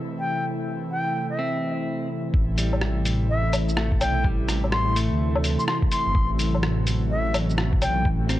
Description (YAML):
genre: future garage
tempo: 126 BPM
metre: 4/4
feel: swing 64% on 16ths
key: A dorian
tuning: A4 = 440 Hz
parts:
  - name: airy breathy pad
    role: sustained chords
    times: 0.0-8.4 s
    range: C3 to E4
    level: -28 LUFS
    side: right 1 dB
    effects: chorus, sidechain pumping
  - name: bright reedy concert flute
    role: melody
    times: 0.2-8.1 s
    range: E5 to C6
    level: -28 LUFS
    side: left 2 dB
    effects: vintage 12-bit sampler grit, analog delay
  - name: clean electric guitar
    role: accompaniment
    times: 1.4-8.4 s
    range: G3 to C4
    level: -32 LUFS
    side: right 2 dB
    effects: sidechain pumping, analog delay
  - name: dark detuned saw bass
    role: bass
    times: 2.3-8.4 s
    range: G1 to D2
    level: -24 LUFS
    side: equal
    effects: sidechain pumping
  - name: electronic kick drum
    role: drums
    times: 2.3-8.2 s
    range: none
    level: -23 LUFS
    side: equal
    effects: vintage 12-bit sampler grit
  - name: lo-fi sampler-style drum kit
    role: drums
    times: 2.6-8.4 s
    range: hi-hat, rim click, shaker, woodblock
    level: -28 LUFS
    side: left 1 dB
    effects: vintage 12-bit sampler grit
room: light reverb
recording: cassette tape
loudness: -21 LUFS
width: side -14 dB against mid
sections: 0.0-2.3 A section; 2.3-8.4 B section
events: none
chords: 0.0 Am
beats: | 0.43 0.91 1.39 1.86 | 2.34 2.82 3.29 3.77 | 4.24 4.72 5.20 5.67 | 6.15 6.62 7.10 7.58 | 8.05